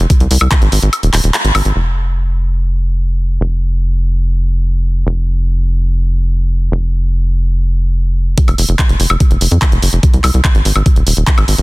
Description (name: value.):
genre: psychedelic trance.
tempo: 145 BPM.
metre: 4/4.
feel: straight.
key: F minor.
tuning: A4 = 440 Hz.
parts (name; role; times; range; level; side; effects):
tight sequencer bass; bass; 0.0-11.6 s; Eb1 to F2; -13 LUFS; equal; none.
drum and bass drum kit; drums; 0.0-1.7, 8.4-11.6 s; handclaps, hi-hat, woodblock; -17 LUFS; equal; overdrive, low-pass filter on hats, studio reverb, low-pass filter on snare, low-pass filter on perc.
electronic kick drum; drums; 0.1-0.6, 8.4-11.4 s; none; -11 LUFS; equal; overdrive, studio reverb.
room: digital ambience.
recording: dense, heavily limited modern master.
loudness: -11 LUFS.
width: side -22 dB against mid.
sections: 0.0-1.8 A section; 1.8-8.4 B section; 8.4-11.6 A section.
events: drop 0.0-1.8, 8.4-11.6; break 0.9-1.8; band accent 1.3; filter sweep on drum 1.8-8.4.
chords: none.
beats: | 0.10 0.51 0.93 1.34 | 1.75 2.17 2.58 3.00 | 3.41 3.82 4.24 4.65 | 5.07 5.48 5.89 6.31 | 6.72 7.13 7.55 7.96 | 8.38 8.79 9.20 9.62 | 10.03 10.45 10.86 11.27.